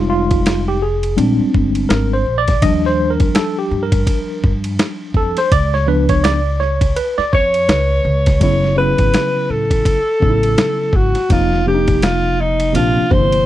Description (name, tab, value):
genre	hip hop, jazz-hop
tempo	83 BPM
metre	4/4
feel	swing 60% on 16ths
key	unclear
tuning	A4 = 440 Hz
part	tine electric piano	accompaniment	0.0-13.5 s	C3 to D#5	-18 LUFS	equal	overdrive, fast stereo tremolo
part	upright bass	bass	0.0-13.4 s	F1 to G2	-19 LUFS	equal	none
part	dusty soul sampler-style drum kit	drums	0.3-13.5 s	hi-hat, kick drum, ride cymbal, snare drum	-17 LUFS	equal	overdrive
part	mellow alto saxophone	melody	7.3-13.5 s	D#4 to C#5	-16 LUFS	left 1 dB	none
room	little or no reverb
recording	dry, close 1970s-style studio recording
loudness	-13 LUFS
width	side -13 dB against mid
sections	0.0-8.4 A section; 8.4-13.5 B section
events	tine electric piano solo 0.0-8.4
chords	0.0 Fm9; 1.2 A#13; 2.6 D#maj9; 5.5 C#7b9; 8.4 F#m7; 11.3 F5; 12.7 A#69